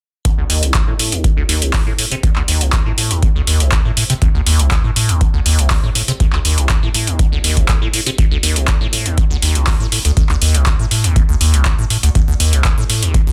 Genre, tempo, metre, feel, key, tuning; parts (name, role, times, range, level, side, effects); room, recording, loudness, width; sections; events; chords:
acid house; 121 BPM; 4/4; straight; A4 = 440 Hz
liquid acid bass; riff; 0.2-13.3 s; C2 to C3; -18 LUFS; equal; phaser, tube saturation, sidechain pumping
booming analog drum machine; drums; 0.2-13.2 s; handclaps, hi-hat; -21 LUFS; equal
electronic kick drum; drums; 0.3-13.2 s; -18 LUFS; equal
light reverb; dense, heavily limited modern master; -15 LUFS; mono
0.3-13.3 A section